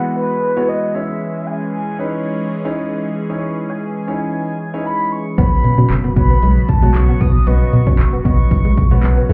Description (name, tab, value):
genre	dance-pop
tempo	115 BPM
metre	4/4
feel	straight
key	unclear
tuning	A4 = 440 Hz
part	mellow horn-like synth lead	melody	0.0-9.3 s	B4 to D#6	-25 LUFS	equal	chorus
part	clear concert grand piano	accompaniment	0.0-9.3 s	A3 to D#5	-27 LUFS	equal	sidechain pumping
part	sweeping resonant pad	sustained chords	0.0-9.3 s	C#3 to G#4	-26 LUFS	equal	chorus, sidechain pumping
part	direct-recorded clean electric guitar	riff	5.4-9.3 s	G#3 to C#4	-26 LUFS	equal	ensemble chorus
part	organ-like FM bass	bass	5.4-9.3 s	F#1 to B2	-17 LUFS	equal	sidechain pumping
part	punchy analog drum machine	drums	5.4-9.3 s	handclaps, hi-hat, kick drum	-17 LUFS	equal	overdrive
part	egg shaker	percussion	5.4-9.3 s	none	-67 LUFS	equal	none
room	light reverb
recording	heard muffled through a wall, club reverb, EQ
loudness	-16 LUFS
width	mono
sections	0.0-9.3 A section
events	none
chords	0.0 Eadd9; 0.9 C#madd9; 5.4 Bsus2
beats	0.17 0.69 | 1.21 1.73 2.25 2.77 | 3.30 3.82 4.34 4.86 | 5.38 5.90 6.43 6.95 | 7.47 7.99 8.51 9.04